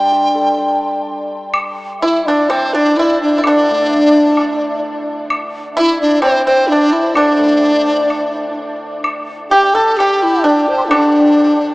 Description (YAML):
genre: chinese traditional, Chinese chamber ensemble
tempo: 64 BPM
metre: 2/4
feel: rubato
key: unclear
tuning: A4 = 443 Hz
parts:
  - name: mellow hollow large dizi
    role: melody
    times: 0.0-11.7 s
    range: D4 to G5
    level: -15 LUFS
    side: equal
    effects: none
  - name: hammered dulcimer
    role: accompaniment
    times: 0.0-11.7 s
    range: D3 to D5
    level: -19 LUFS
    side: left 1 dB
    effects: none
  - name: woodblock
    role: percussion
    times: 1.5-11.1 s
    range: none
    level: -24 LUFS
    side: equal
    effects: none
  - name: mellow hollow low xiao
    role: second line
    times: 2.0-11.7 s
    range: C5 to C6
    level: -18 LUFS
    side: left 1 dB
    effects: none
  - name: pipa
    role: second line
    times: 2.0-11.7 s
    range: C4 to A4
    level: -17 LUFS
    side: right 1 dB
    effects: none
room: wet huge ambient reverb, RT60 8.6 s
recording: in a vast, echoing space, small speaker sound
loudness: -11 LUFS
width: side -22 dB against mid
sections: 0.0-1.5 A section; 1.5-11.7 B section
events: none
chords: none